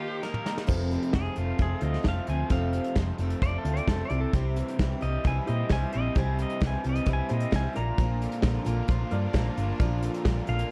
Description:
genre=folk rock and heartland rock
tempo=132 BPM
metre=4/4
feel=straight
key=F major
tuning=A4 = 440 Hz
part: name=pedal steel guitar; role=second line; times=0.0-10.7 s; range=F4 to Bb5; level=-38 LUFS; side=equal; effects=none
part: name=picked steel-string acoustic guitar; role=accompaniment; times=0.0-10.7 s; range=F2 to A4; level=-37 LUFS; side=equal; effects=none
part: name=raw garage guitar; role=riff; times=0.0-10.7 s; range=F2 to G4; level=-39 LUFS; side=equal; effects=overdrive
part: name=soft brush drum kit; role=drums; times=0.2-10.7 s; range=crash cymbal, hi-hat, kick drum, snare drum, toms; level=-31 LUFS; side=equal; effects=none
part: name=warm upright piano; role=accompaniment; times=0.7-10.6 s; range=E4 to D5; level=-43 LUFS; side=equal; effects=none
part: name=hollow-body short-scale picked electric bass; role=bass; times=0.7-10.6 s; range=F1 to Bb2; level=-31 LUFS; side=equal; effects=none
part: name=clear studio string section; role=sustained chords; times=8.0-10.7 s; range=Bb3 to Bb4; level=-43 LUFS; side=equal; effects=none
room=small room ambience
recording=dark, warm production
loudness=-27 LUFS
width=mono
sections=0.7-10.7 A section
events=break 0.0-0.7; drum fill 0.2-0.7; pedal steel guitar solo 0.7-10.7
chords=0.0 Eb; 0.7 F; 4.1 C; 7.8 Bb

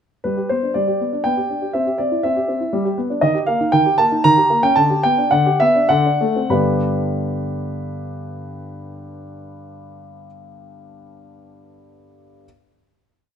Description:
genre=classical-period piano sonatina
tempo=97-122 BPM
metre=3/4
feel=straight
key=G major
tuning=A4 = 440 Hz
part: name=warm grand piano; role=solo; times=0.2-12.5 s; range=G2 to B5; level=-16 LUFS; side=equal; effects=none
room=light reverb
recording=close, detailed microphones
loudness=-15 LUFS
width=side -8 dB against mid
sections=0.2-6.5 A section; 6.5-10.2 final chord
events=slowing down 2.5-6.5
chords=0.2 G; 1.2 G/B; 1.7 C; 2.7 G; 3.2 Eb; 4.2 Eb7; 4.8 G/D; 5.9 D7; 6.5 G

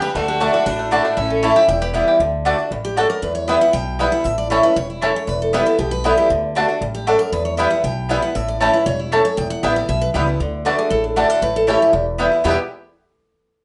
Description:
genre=bluegrass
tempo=234 BPM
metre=4/4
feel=straight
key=E dorian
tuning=A4 = 444 Hz
part: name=bluegrass banjo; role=melody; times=0.0-12.6 s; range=G3 to G4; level=-28 LUFS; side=equal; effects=none
part: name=picked steel-string acoustic guitar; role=melody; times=0.0-12.6 s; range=D4 to G5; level=-25 LUFS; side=equal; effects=none
part: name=bright fiddle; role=second line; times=0.0-1.7 s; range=C#4 to G4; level=-28 LUFS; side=equal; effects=none
part: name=picked old ladder-braced acoustic guitar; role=accompaniment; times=0.0-12.6 s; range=E2 to F#4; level=-21 LUFS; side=equal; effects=none
part: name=upright bass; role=bass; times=0.1-12.6 s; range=E1 to E2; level=-28 LUFS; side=equal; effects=none
part: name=mandolin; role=stabs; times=0.4-12.6 s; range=A3 to A5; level=-24 LUFS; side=equal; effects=none
room=wet studio reverb, RT60 0.6 s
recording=rough home demo mix, nothing above 11.0 kHz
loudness=-18 LUFS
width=mono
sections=0.0-2.2 A section; 2.2-10.4 B section; 10.4-12.4 C section; 12.4-13.5 D section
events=none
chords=0.1 D; 1.2 A; 1.7 Em; 2.2 D; 3.2 Em; 4.3 A; 5.3 Em; 6.3 D; 7.3 Em; 8.4 A; 9.4 Em; 10.4 D; 11.4 A; 11.9 Em

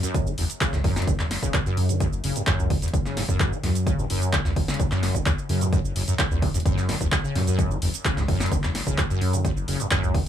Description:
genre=acid house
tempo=129 BPM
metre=4/4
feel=straight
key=unclear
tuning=A4 = 440 Hz
part: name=acid bass, saw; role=riff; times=0.0-10.3 s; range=E2 to E3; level=-26 LUFS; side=equal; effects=ensemble chorus, dub echo
part: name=round analog bass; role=bass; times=0.0-10.2 s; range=E1 to F#2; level=-27 LUFS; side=equal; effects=tube saturation, sidechain pumping
part: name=punchy analog drum machine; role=drums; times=0.0-10.2 s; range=handclaps, hi-hat, shaker, snare drum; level=-28 LUFS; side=equal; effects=overdrive
part: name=electronic kick drum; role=drums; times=0.1-10.2 s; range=none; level=-25 LUFS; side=equal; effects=overdrive
room=little or no reverb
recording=none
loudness=-21 LUFS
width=side -10 dB against mid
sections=0.0-10.3 A section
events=none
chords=0.0 F#5

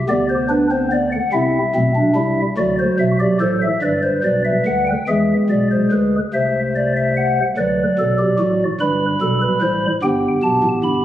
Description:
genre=classical, baroque-style 4-part fugue for pipe organ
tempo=48 BPM (dotted quarters)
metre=6/8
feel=straight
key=unclear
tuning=A4 = 440 Hz
part: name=chamber organ, stopped flute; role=solo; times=0.0-11.0 s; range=G1 to B5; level=-15 LUFS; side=equal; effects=none
room=wet recital hall reverb, RT60 1.6 s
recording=recorded on a phone in the room, studio ambience, compression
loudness=-15 LUFS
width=side -12 dB against mid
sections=0.0-5.1 A section; 5.1-11.0 B section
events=none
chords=0.1 G/D; 1.3 C; 2.6 D7; 3.8 G; 5.1 E7; 6.3 Am/C; 7.6 D; 8.8 G; 10.0 Gadd9

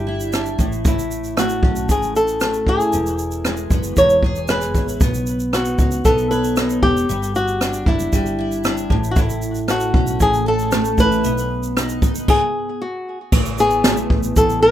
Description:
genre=acoustic pop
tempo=115 BPM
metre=4/4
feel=straight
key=unclear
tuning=A4 = 440 Hz
part: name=flamenco guitar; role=melody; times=0.0-14.7 s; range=E4 to C#5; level=-19 LUFS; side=left 1 dB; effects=ping-pong delay
part: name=picked steel-string acoustic guitar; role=accompaniment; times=0.0-14.7 s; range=E2 to C#5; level=-23 LUFS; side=right 1 dB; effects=double-tracked left and right
part: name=woody fretless electric bass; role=bass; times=0.0-14.7 s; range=E1 to C#2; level=-26 LUFS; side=equal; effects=analog chorus
part: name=jazz brush drum kit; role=drums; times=0.2-14.6 s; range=crash cymbal, kick drum, rim click, shaker, snare drum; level=-19 LUFS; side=equal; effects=none
room=little or no reverb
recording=rough home demo mix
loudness=-16 LUFS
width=side -11 dB against mid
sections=0.0-13.3 A section; 13.3-14.7 B section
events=none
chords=0.0 G5; 0.6 A; 2.9 E; 5.0 Badd9; 7.1 G5; 8.9 A; 11.2 B; 13.3 Asus2

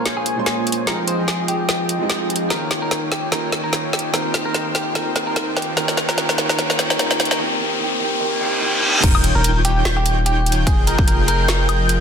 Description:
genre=future bass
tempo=147 BPM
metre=4/4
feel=swing 56% on 16ths, half-time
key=unclear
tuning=A4 = 440 Hz
part: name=clean electric guitar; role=melody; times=0.0-12.0 s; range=G4 to C5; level=-26 LUFS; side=left 1 dB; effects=sidechain pumping, low-pass filter, dub echo
part: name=warm baby grand piano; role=accompaniment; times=0.0-9.1 s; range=Bb2 to C6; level=-26 LUFS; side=right 3 dB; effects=sidechain pumping, dub echo
part: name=soft supersaw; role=riff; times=0.0-12.0 s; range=Eb3 to Ab5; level=-24 LUFS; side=equal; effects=sidechain pumping, low-pass filter
part: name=long sustained 808-style bass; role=bass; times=0.0-12.0 s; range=Eb1 to Bb1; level=-21 LUFS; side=equal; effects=sidechain pumping, high-pass filter
part: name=riser, reverse cymbal and sub drop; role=sound effects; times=0.7-10.7 s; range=none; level=-25 LUFS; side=left 1 dB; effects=none
part: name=trap drum kit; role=drums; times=0.1-12.0 s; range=crash cymbal, hi-hat, snare drum, woodblock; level=-21 LUFS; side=equal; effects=soft clipping on snare
part: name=airy dreamy lead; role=arpeggios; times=9.0-12.0 s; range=G6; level=-25 LUFS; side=left 1 dB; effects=chorus, vintage 12-bit sampler grit, sidechain pumping
part: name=electronic kick drum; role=drums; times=9.0-11.1 s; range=none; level=-16 LUFS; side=equal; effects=none
room=moderate lush hall reverb, RT60 1.5 s, digital ambience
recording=dense, heavily limited modern master, high-pass filter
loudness=-16 LUFS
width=side -7 dB against mid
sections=0.0-9.0 A section; 9.0-12.0 B section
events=build-up 0.0-9.0; drum fill 0.0-7.4; filter sweep on supersaw synth 0.0-9.0; riser 0.7-9.0; reverse cymbal 8.2-9.0; drop 9.0-12.0; impact 9.0-10.7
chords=0.0 Bbm9; 0.9 Fm7; 2.5 Eb7; 4.1 F5; 5.8 Bbm; 7.4 Eb6; 9.0 Eb7; 10.7 Fm7

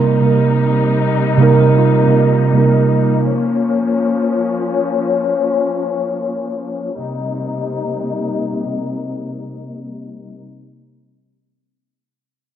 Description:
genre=hip hop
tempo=free time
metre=none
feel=none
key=C phrygian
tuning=A4 = 443 Hz
part: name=muted felt-like synth keys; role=accompaniment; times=0.0-3.3 s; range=C3 to Bb4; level=-12 LUFS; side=right 3 dB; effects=chorus, low-pass filter
part: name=dark studio string section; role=sustained chords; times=0.0-10.4 s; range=C3 to Eb4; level=-18 LUFS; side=left 4 dB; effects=low-pass filter
room=moderate plate reverb, RT60 1.9 s, small room ambience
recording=dark, warm production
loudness=-14 LUFS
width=side -10 dB against mid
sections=0.0-7.0 A section; 7.0-10.7 B section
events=filter sweep 0.0-7.0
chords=0.0 Cm7; 3.3 Bbm; 7.0 Cm7

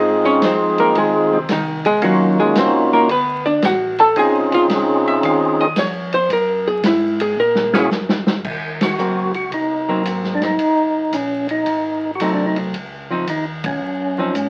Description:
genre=soul jazz organ trio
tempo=112 BPM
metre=4/4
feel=swing 67% on 8ths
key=Ab mixolydian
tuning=A4 = 444 Hz
part: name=percussive tonewheel organ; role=melody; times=0.0-14.5 s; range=Ab3 to Ab4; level=-19 LUFS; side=equal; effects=slow rotary speaker, overdrive
part: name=mellow tonewheel organ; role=bass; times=0.0-14.5 s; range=Gb1 to Bb2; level=-34 LUFS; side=equal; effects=overdrive, chorus vibrato, slow rotary speaker
part: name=archtop guitar, miked and amplified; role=accompaniment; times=0.3-14.3 s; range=C3 to A5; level=-19 LUFS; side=equal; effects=none
part: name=vintage drum kit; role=drums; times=0.4-14.5 s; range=crash cymbal, hi-hat, kick drum, ride cymbal, snare drum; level=-27 LUFS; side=equal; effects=none
room=moderate studio reverb, RT60 0.6 s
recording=very old 78 rpm record, vinyl crackle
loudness=-17 LUFS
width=mono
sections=0.0-8.4 A section; 8.4-14.5 B section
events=hollow-body jazz guitar solo 0.0-8.4; drum fill 7.4-8.4; band accent 8.7, 13.6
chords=0.0 Fm7; 2.0 Ebm7; 3.1 D; 4.2 Dbmaj9; 6.3 Gb9; 8.4 Ab9; 10.6 Ebm; 11.7 Ab7b9; 12.7 Dbmaj9

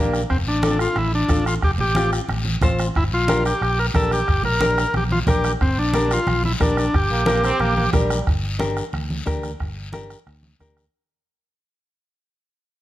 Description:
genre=latin, cumbia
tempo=180 BPM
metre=4/4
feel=straight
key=G minor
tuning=A4 = 443 Hz
part: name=brilliant trombone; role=second line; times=0.0-0.2, 7.1-8.2 s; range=G3 to C4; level=-26 LUFS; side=right 3 dB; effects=none
part: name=nylon-string guitar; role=accompaniment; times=0.0-10.8 s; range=C4 to C5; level=-25 LUFS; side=left 2 dB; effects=none
part: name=fingered electric bass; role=bass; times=0.0-10.9 s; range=F1 to D2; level=-24 LUFS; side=equal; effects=none
part: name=bombo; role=percussion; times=0.1-10.9 s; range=none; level=-24 LUFS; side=right 1 dB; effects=none
part: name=congas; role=percussion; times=0.1-10.9 s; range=none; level=-28 LUFS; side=right 1 dB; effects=none
part: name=guiro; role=percussion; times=0.1-10.9 s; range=none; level=-34 LUFS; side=left 5 dB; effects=none
part: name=combo organ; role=melody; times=0.3-7.9 s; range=C4 to Bb4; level=-22 LUFS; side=equal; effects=none
room=light reverb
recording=none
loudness=-18 LUFS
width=side -14 dB against mid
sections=0.0-8.3 A section; 8.3-10.9 B section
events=fade-out 8.3-10.9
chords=0.3 F; 3.0 Gm

